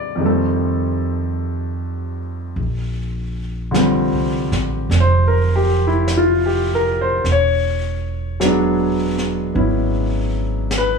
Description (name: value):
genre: jazz ballad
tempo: 51 BPM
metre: 4/4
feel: swing 68% on 8ths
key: unclear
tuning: A4 = 442 Hz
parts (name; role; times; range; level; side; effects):
- warm grand piano; accompaniment; 0.0-11.0 s; C2 to Eb5; -18 LUFS; left 1 dB; none
- upright bass; bass; 2.6-11.0 s; E1 to C2; -20 LUFS; right 2 dB; none
- jazz brush drum kit; drums; 2.6-11.0 s; brushed snare drum, hi-hat, snare drum; -28 LUFS; left 2 dB; none
room: light reverb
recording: studio ambience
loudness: -16 LUFS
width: side -5 dB against mid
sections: 0.0-2.6 A section; 2.6-11.0 B section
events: break 0.0-2.6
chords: 0.2 F9; 2.6 Bb69; 7.2 E9